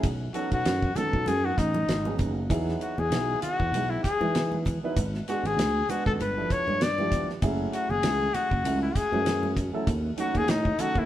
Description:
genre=electric jazz fusion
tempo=98 BPM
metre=4/4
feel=swing 56% on 16ths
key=unclear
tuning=A4 = 440 Hz
part: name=dark concert grand piano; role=accompaniment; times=0.0-11.1 s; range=F3 to B4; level=-33 LUFS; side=right 3 dB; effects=none
part: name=sustaining fretless electric bass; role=bass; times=0.0-11.1 s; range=F#1 to E3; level=-30 LUFS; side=equal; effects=none
part: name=damped 70s drum kit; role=drums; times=0.0-11.1 s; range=hi-hat, kick drum, ride cymbal, snare drum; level=-30 LUFS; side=equal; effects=none
part: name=warm trumpet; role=melody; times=0.3-11.1 s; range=D#4 to D5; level=-28 LUFS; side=left 3 dB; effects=none
part: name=congas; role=percussion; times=1.0-10.9 s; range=none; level=-37 LUFS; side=right 2 dB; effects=none
room=moderate stone room reverb, RT60 1.2 s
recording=band playing live in one room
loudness=-24 LUFS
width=side -12 dB against mid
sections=0.0-11.1 A section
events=none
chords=0.0 B7; 2.5 Emaj9; 5.0 G#m7b5; 6.2 G13; 7.4 F#m9; 9.9 D#m7b5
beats=| 0.04 0.66 1.28 1.89 | 2.51 3.12 3.74 4.35 | 4.97 5.58 6.20 6.81 | 7.42 8.04 8.65 9.26 | 9.87 10.48

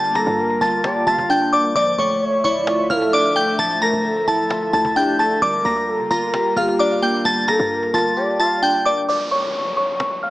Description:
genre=hip hop, trap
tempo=131 BPM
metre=4/4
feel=half-time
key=unclear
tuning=A4 = 440 Hz
part: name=glassy synth bell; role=melody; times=0.0-10.3 s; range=C#5 to Bb6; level=-18 LUFS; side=equal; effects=chorus, phaser, low-pass filter, analog delay
part: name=glassy wavetable pluck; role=accompaniment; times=0.0-9.1 s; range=F3 to G4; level=-25 LUFS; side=left 1 dB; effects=chorus, low-pass filter
part: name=airy breathy pad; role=sustained chords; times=0.0-9.0 s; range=D3 to E5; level=-29 LUFS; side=equal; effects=chorus
part: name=short 808-style bass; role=bass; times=0.0-8.2 s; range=D1 to D3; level=-31 LUFS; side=equal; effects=none
part: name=gliding portamento lead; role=second line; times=0.2-8.6 s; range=G4 to F5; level=-23 LUFS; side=right 1 dB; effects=chorus, phaser, analog delay
part: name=cajon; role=drums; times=0.2-10.3 s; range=none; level=-30 LUFS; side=equal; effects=analog delay
part: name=downlifter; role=sound effects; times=9.1-10.3 s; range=none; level=-28 LUFS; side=equal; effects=none
room=moderate spring reverb, RT60 1.8 s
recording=echo-heavy mix, small speaker sound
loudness=-16 LUFS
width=side -17 dB against mid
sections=0.0-9.1 A section; 9.1-10.3 B section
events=break 0.0-1.8, 9.1-10.3; drums muted 8.2-9.1; filter sweep 9.1-10.3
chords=0.0 Gm7; 1.8 Dmadd9; 5.4 Gm7; 9.1 N.C.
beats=0.38 0.84 1.30 | 1.76 2.21 2.67 3.13 | 3.59 4.05 4.50 4.96 | 5.42 5.88 6.34 6.79 | 7.25 7.71 8.17 8.63 | 9.08 9.54 10.00

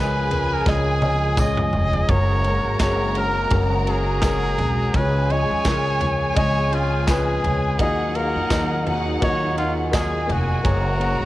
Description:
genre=piano-driven pop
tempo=84 BPM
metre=4/4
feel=swing 56% on 16ths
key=F# major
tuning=A4 = 439 Hz
part: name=clear trumpet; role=melody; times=0.0-11.3 s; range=E#4 to D#5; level=-25 LUFS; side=equal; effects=cassette tape
part: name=warm studio violin section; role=second line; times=0.0-11.3 s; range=D#4 to A#5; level=-28 LUFS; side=right 1 dB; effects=cassette tape
part: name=dark upright piano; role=accompaniment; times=0.0-11.3 s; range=C#3 to F#5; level=-25 LUFS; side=left 2 dB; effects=cassette tape
part: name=lush unison pad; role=sustained chords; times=0.0-11.3 s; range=C#3 to G#4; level=-31 LUFS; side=equal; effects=chorus, cassette tape
part: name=upright bass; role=bass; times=0.0-11.3 s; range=E#1 to E#2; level=-24 LUFS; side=equal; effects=none
part: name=modern studio drum kit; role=drums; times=0.3-11.2 s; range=handclaps, kick drum, ride cymbal, snare drum, toms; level=-25 LUFS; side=equal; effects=cassette tape
part: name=tambourine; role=percussion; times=1.4-10.1 s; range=none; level=-38 LUFS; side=right 5 dB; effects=none
room=light reverb, studio reverb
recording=home recording on cassette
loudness=-18 LUFS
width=side -16 dB against mid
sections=0.0-11.3 A section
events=drum fill 0.7-2.1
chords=0.0 C#; 2.1 F#add9; 4.9 C#; 7.8 D#madd9; 10.6 F#add9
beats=0.66 1.37 | 2.09 2.80 3.51 4.23 | 4.94 5.65 6.37 7.08 | 7.79 8.51 9.22 9.93 | 10.64

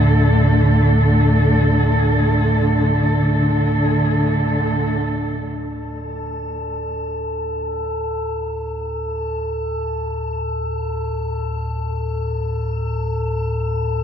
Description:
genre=dark ambient drone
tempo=free time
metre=none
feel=none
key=unclear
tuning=A4 = 442 Hz
part: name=dark studio cello section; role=sustained chords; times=0.0-5.4 s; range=D3 to A4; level=-19 LUFS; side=right 1 dB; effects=none
part: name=deep rumbling drone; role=drone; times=0.0-14.0 s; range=D2 to A2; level=-21 LUFS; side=equal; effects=built-in reverb, wide subtle chorus
part: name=metallic inharmonic drone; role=texture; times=0.0-14.0 s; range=D4 to A4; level=-25 LUFS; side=left 1 dB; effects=chorus, built-in reverb
room=wet cathedral reverb, RT60 7.3 s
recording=dark, warm production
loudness=-17 LUFS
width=side -8 dB against mid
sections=0.0-5.4 A section; 5.4-14.0 B section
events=none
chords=0.0 D5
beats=free time

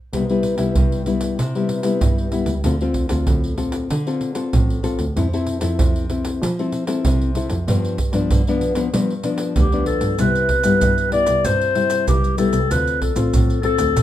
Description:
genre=samba and choro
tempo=95 BPM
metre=4/4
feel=straight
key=C major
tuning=A4 = 440 Hz
part: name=nylon-string guitar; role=accompaniment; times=0.1-14.0 s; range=G2 to A4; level=-21 LUFS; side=left 3 dB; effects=none
part: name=dark double bass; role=bass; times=0.1-14.0 s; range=A1 to G3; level=-23 LUFS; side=right 1 dB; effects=none
part: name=surdo, pandeiro and maracas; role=percussion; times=0.1-14.0 s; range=none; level=-22 LUFS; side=right 2 dB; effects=none
part: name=mellow clarinet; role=melody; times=9.6-14.0 s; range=G4 to D5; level=-19 LUFS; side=left 2 dB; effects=plate reverb
room=light reverb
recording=none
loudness=-17 LUFS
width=side -12 dB against mid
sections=0.1-10.2 A section; 10.2-14.0 B section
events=none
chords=0.1 Cmaj7; 2.6 Dm7; 5.2 Fmaj7; 7.7 G7; 10.2 Cmaj7; 12.7 Dm7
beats=| 0.14 0.76 1.39 2.02 | 2.65 3.28 3.90 4.53 | 5.16 5.79 6.42 7.05 | 7.68 8.31 8.94 9.56 | 10.19 10.82 11.45 12.08 | 12.71 13.34 13.97

